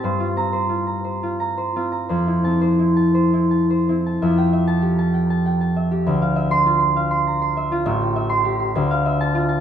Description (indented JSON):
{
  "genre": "classical, solo harp piece",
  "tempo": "55-71 BPM (dotted quarters)",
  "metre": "6/8",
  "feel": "rubato",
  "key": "F major",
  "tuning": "A4 = 437 Hz",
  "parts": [
    { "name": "concert harp", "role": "solo", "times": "0.0-9.6 s", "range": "A1 to C6", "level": "-17 LUFS", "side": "equal", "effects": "none" }
  ],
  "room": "wet stone room reverb, RT60 1.4 s",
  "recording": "none",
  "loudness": "-17 LUFS",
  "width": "side -9 dB against mid",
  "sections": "0.0-4.2 A section; 4.2-9.6 B section",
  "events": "none",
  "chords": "0.0 Gm11; 2.1 Fmaj7; 4.2 Fmaj9; 6.1 Dm9; 7.9 Am7; 8.7 Dmadd9",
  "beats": "| 0.04 1.05 | 2.11 3.17 | 4.23 5.16 | 6.09 6.98 | 7.87 8.75"
}